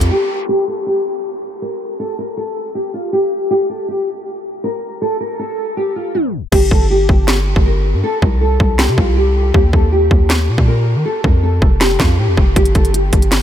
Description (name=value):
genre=hip hop, trap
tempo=159 BPM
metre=4/4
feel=half-time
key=G minor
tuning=A4 = 440 Hz
part: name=nylon-string guitar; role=melody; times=0.0-13.4 s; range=F4 to Bb4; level=-18 LUFS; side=equal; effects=analog chorus
part: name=long sustained 808-style bass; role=bass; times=0.0-0.1, 6.5-13.4 s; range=F1 to Eb3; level=-15 LUFS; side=equal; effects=none
part: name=trap drum kit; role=drums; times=0.0-0.1, 6.5-13.4 s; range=crash cymbal, handclaps, hi-hat, kick drum, snare drum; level=-15 LUFS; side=equal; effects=none
room=light reverb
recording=low-pass filter, tape stop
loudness=-13 LUFS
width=side -10 dB against mid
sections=0.5-6.5 A section; 6.5-13.4 B section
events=break 0.1-0.5; filter sweep 0.5-6.5; tape stop 6.1-6.5; hi-hats muted 6.5-12.6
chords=0.5 N.C.; 6.5 Gm; 8.0 C5; 9.5 Eb; 11.1 F; 12.6 N.C.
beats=0.11 | 0.49 0.86 1.24 1.62 | 2.00 2.37 2.75 3.13 | 3.50 3.88 4.26 4.64 | 5.01 5.39 5.77 6.15 | 6.52 6.90 7.28 7.66 | 8.03 8.41 8.79 9.17 | 9.54 9.92 10.30 10.68 | 11.05 11.43 11.81 12.19 | 12.56 12.94 13.32